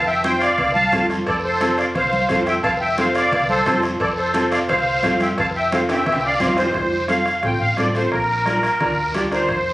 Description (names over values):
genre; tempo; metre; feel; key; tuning
latin, cumbia; 175 BPM; 4/4; straight; F major; A4 = 440 Hz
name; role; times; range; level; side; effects
musette accordion; melody; 0.0-9.7 s; A4 to A5; -18 LUFS; equal; none
hollow-body short-scale fingered electric bass; bass; 0.0-9.7 s; F1 to D2; -29 LUFS; equal; none
bright upright piano; accompaniment; 0.2-9.5 s; C4 to C5; -24 LUFS; equal; none
bombo; percussion; 0.2-9.7 s; none; -30 LUFS; equal; none
congas; percussion; 0.2-9.7 s; none; -29 LUFS; equal; none
guiro; percussion; 0.2-9.7 s; none; -33 LUFS; left 1 dB; none
cowbell and timbales; percussion; 0.6-6.8 s; none; -28 LUFS; right 1 dB; none
room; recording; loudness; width
light reverb; recorded on a phone in the room, studio ambience; -16 LUFS; side -18 dB against mid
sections
0.0-6.7 A section; 6.7-9.7 B section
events
drum fill 5.9-6.7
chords
0.0 F; 8.1 Bb